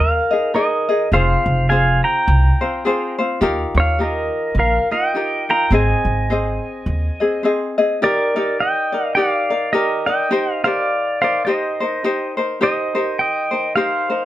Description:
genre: Hawaiian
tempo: 104 BPM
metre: 4/4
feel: swing 59% on 8ths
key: Ab major, Eb major from 8.0 s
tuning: A4 = 440 Hz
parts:
  - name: pedal steel guitar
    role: melody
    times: 0.0-14.2 s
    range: Bb4 to Bb5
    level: -18 LUFS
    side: right 1 dB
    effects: none
  - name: ukulele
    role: accompaniment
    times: 0.0-14.2 s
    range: C4 to Eb5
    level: -20 LUFS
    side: left 2 dB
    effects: none
  - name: upright bass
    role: bass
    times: 0.0-7.1 s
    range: F1 to Eb2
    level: -18 LUFS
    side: equal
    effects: none
room: moderate small room reverb, RT60 0.6 s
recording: band playing live in one room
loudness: -16 LUFS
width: side -14 dB against mid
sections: 0.0-8.0 A section; 8.0-14.2 B section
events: none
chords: 0.0 Absus2; 1.1 Fm; 3.4 Ebadd9; 5.7 Ab; 8.0 Ebmaj7; 10.3 Eb6

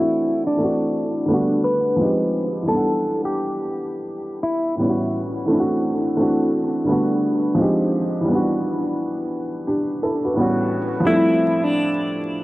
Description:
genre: hip hop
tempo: 86 BPM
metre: 4/4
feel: swing 62% on 16ths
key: E minor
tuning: A4 = 440 Hz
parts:
  - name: clean electric guitar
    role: melody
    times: 0.0-4.7, 11.1-12.4 s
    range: D4 to B4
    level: -22 LUFS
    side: left 1 dB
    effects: low-pass filter, analog delay
  - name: warm upright piano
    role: accompaniment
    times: 0.0-12.4 s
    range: A2 to F#5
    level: -20 LUFS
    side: equal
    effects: cassette tape, low-pass filter, analog delay
room: moderate plate reverb, RT60 3.7 s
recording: echo-heavy mix, vinyl crackle, low-pass filter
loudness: -18 LUFS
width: side -18 dB against mid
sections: 0.0-11.1 A section; 11.1-12.4 B section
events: filter sweep 0.0-11.1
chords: 0.0 D9; 1.3 Gmaj9/D; 2.0 Fm7; 2.7 Em7; 4.8 A13; 5.5 D9; 6.9 Gmaj9/D; 7.6 Fm7; 8.3 Em7; 10.4 A13; 11.1 Fmaj7

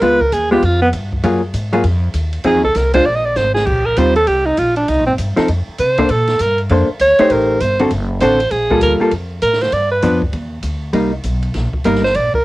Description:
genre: jazz, small-group swing and bop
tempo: 198 BPM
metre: 4/4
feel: swing 63% on 8ths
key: Bb major, G minor from 8.5 s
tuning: A4 = 440 Hz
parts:
  - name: clear alto saxophone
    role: second line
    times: 0.0-12.4 s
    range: Cb4 to Eb5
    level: -14 LUFS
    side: right 1 dB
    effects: none
  - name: vintage hollow-body jazz guitar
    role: accompaniment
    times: 0.0-12.0 s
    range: D3 to C5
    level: -15 LUFS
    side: left 1 dB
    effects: none
  - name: upright bass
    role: bass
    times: 0.0-12.4 s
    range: F#1 to C3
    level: -19 LUFS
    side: equal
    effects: none
  - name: open jazz drum kit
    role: drums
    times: 0.0-12.4 s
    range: crash cymbal, hi-hat, kick drum, ride cymbal, snare drum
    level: -26 LUFS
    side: equal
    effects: cassette tape
room: light reverb, small room ambience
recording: home recording on cassette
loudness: -13 LUFS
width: side -18 dB against mid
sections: 0.0-8.5 A section; 8.5-12.4 A section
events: alto saxophone solo 0.0-12.4; drum fill 3.4-3.7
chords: 0.0 Db7; 1.2 Gbmaj9; 2.4 Fm7; 3.1 Abadd9; 3.7 Eb69; 4.9 Cm7; 5.5 F; 6.1 Bbmaj9; 7.3 Am7b5; 7.9 D7; 8.5 Gm9; 9.7 G7; 10.9 Cm7

